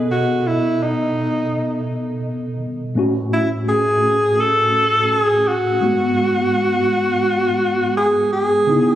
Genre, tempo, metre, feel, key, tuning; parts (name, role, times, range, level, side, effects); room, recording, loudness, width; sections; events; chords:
R&B; 84 BPM; 4/4; swing 54% on 16ths; A4 = 440 Hz
mellow tine electric piano; accompaniment; 0.0-9.0 s; G#2 to D#5; -20 LUFS; equal; medium stereo tremolo
mellow alto saxophone; melody; 0.1-9.0 s; D#4 to A4; -17 LUFS; equal
light reverb, studio reverb; recorded on a phone in the room, club reverb; -16 LUFS; side -12 dB against mid
0.0-8.7 A section
0.0 B7; 3.0 A6; 5.8 G#m7